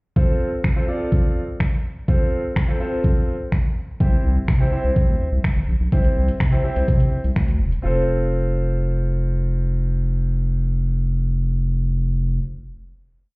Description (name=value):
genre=dance-pop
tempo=125 BPM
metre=4/4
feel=straight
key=F major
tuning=A4 = 440 Hz
part: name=clear concert grand piano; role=accompaniment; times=0.2-12.4 s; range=C4 to D5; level=-26 LUFS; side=equal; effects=sidechain pumping
part: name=pop drum kit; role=drums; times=0.2-7.8 s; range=finger snaps, hi-hat, kick drum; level=-18 LUFS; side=equal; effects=overdrive
part: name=round analog bass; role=bass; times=4.0-12.4 s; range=E1 to C3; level=-19 LUFS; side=equal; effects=sidechain pumping
room=little or no reverb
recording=heard muffled through a wall, stone room reverb, EQ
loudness=-18 LUFS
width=side -27 dB against mid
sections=0.2-7.8 verse; 7.8-11.7 final chord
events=none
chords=0.2 F; 4.0 C; 7.8 F